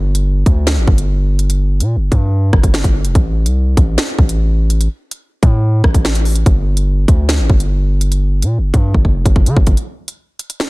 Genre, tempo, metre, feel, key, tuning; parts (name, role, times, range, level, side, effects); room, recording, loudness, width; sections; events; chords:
hip hop, drill; 145 BPM; 4/4; half-time; A4 = 436 Hz
distorted 808-style bass; bass; 0.0-9.8 s; F1 to D3; -14 LUFS; equal; distortion
drill drum kit; drums; 0.1-10.7 s; finger snaps, hi-hat, kick drum, rim click, snare drum; -13 LUFS; equal
little or no reverb; dense, heavily limited modern master; -11 LUFS; side -22 dB against mid
0.0-9.8 A section
drum fill 8.9-9.8